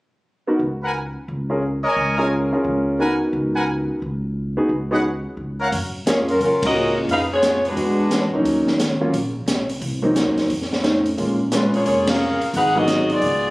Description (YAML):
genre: jazz, big band swing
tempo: 176 BPM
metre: 4/4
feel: swing 64% on 8ths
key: unclear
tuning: A4 = 440 Hz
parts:
  - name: clear concert grand piano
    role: accompaniment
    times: 0.5-13.2 s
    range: F#3 to A#4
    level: -21 LUFS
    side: equal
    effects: none
  - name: upright bass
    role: bass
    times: 0.6-13.5 s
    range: E#1 to F#2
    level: -28 LUFS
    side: equal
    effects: none
  - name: bright trumpet section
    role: stabs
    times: 0.8-5.7 s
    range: A#4 to G#5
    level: -23 LUFS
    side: equal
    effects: none
  - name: open jazz drum kit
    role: drums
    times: 5.7-13.3 s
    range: hi-hat, kick drum, ride cymbal, snare drum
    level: -24 LUFS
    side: equal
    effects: none
  - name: mellow saxophone section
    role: melody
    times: 6.1-8.3, 11.5-13.5 s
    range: E#3 to F#5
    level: -18 LUFS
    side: equal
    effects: none
room: moderate large studio reverb, RT60 1.3 s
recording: recorded on a phone in the room, club reverb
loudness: -18 LUFS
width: side -20 dB against mid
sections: 0.3-5.7 A section; 5.7-13.5 B section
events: band accent 6.6, 12.0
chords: 0.3 G#m9; 1.6 D#7sus4; 3.0 G#m9; 4.4 C#9sus4; 5.7 F#maj7; 7.1 Fdim; 7.8 E9; 8.5 D#m7; 9.8 Cm7b5; 10.5 F7b13; 11.2 A#m7; 12.5 G#m7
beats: | 0.26 0.60 0.94 1.29 | 1.63 1.97 2.31 2.65 | 2.99 3.33 3.68 4.02 | 4.36 4.70 5.04 5.38 | 5.72 6.07 6.41 6.75 | 7.09 7.43 7.77 8.11 | 8.45 8.79 9.13 9.47 | 9.81 10.15 10.49 10.84 | 11.18 11.52 11.86 12.20 | 12.54 12.88 13.22